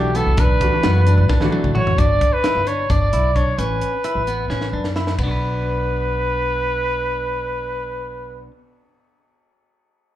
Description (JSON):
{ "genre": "progressive instrumental, band music in an uneven meter", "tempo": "262 BPM (eighths)", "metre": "7/8", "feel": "straight", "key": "B minor", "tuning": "A4 = 440 Hz", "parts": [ { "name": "mellow trumpet", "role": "melody", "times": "0.0-8.5 s", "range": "G4 to D5", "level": "-21 LUFS", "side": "equal", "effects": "plate reverb, slapback echo" }, { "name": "warm baby grand piano", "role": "accompaniment", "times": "0.0-2.0 s", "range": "E3 to F#4", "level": "-23 LUFS", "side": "right 1 dB", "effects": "plate reverb, slapback echo" }, { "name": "clean electric guitar", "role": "arpeggios", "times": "0.0-8.6 s", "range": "B3 to B4", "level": "-28 LUFS", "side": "equal", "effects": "plate reverb, slapback echo, digital delay" }, { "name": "upright bass", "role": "bass", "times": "0.0-8.5 s", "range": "G1 to F#2", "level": "-21 LUFS", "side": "equal", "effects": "none" }, { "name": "crisp fusion drum kit", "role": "drums", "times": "0.1-5.3 s", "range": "hi-hat, kick drum, ride cymbal, snare drum, toms", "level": "-22 LUFS", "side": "equal", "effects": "none" } ], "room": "light reverb", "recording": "live gig heard through the venue's PA, club ambience", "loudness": "-16 LUFS", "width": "side -13 dB against mid", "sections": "0.0-2.0 A section; 2.0-5.2 B section; 5.2-8.4 C section", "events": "drum fill 1.3-2.0, 4.5-5.2", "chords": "0.0 Bm; 2.0 G; 3.6 Aadd9; 5.2 Bm" }